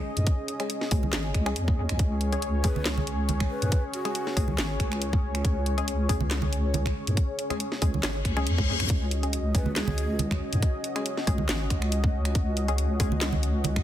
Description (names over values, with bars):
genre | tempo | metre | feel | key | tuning
deep dubstep | 139 BPM | 4/4 | swing 54% on 16ths, half-time | unclear | A4 = 440 Hz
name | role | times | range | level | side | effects
dark analog pad | sustained chords | 0.0-13.8 s | C#4 to D#5 | -34 LUFS | left 1 dB | chorus
deep soft wobble bass | bass | 0.0-13.8 s | G#1 to F#2 | -27 LUFS | equal | chorus
garage drum kit | drums | 0.2-13.8 s | finger snaps, handclaps, hi-hat, snare drum | -32 LUFS | equal | small room reverb
electronic kick drum | drums | 0.3-13.8 s | none | -26 LUFS | equal | small room reverb
filtered dub chord stab | stabs | 0.6-13.1 s | G#3 to G#4 | -35 LUFS | left 3 dB | chorus, dub echo
congas | percussion | 0.9-13.8 s | none | -34 LUFS | right 4 dB | dub echo
breathy mellow ney | melody | 2.6-4.5, 9.5-10.2 s | F#4 to B4 | -40 LUFS | right 2 dB | dub echo
reverse cymbal | sound effects | 8.2-8.9 s | none | -32 LUFS | left 6 dB | none
room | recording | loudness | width
little or no reverb | dense, heavily limited modern master | -24 LUFS | side -12 dB against mid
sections
0.0-13.8 A section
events
reverse cymbal 8.2-8.9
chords
0.0 C#5